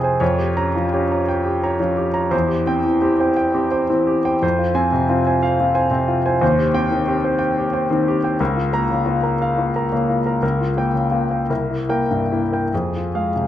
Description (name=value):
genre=classical, romantic character piece for solo piano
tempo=47-62 BPM (dotted quarters)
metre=6/8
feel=rubato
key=unclear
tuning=A4 = 440 Hz
part: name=clear grand piano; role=solo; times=0.0-13.5 s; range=C2 to Bb5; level=-17 LUFS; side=equal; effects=none
room=moderate recital hall reverb, RT60 1.4 s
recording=close, detailed microphones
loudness=-17 LUFS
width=side -12 dB against mid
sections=0.0-13.5 A section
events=none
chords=0.2 Gm7b5/F; 2.3 C/E; 4.4 Fm; 6.4 Cm/Eb; 8.4 Bbm/Db; 10.4 Gm7b5/Db; 11.5 C7; 12.7 Fm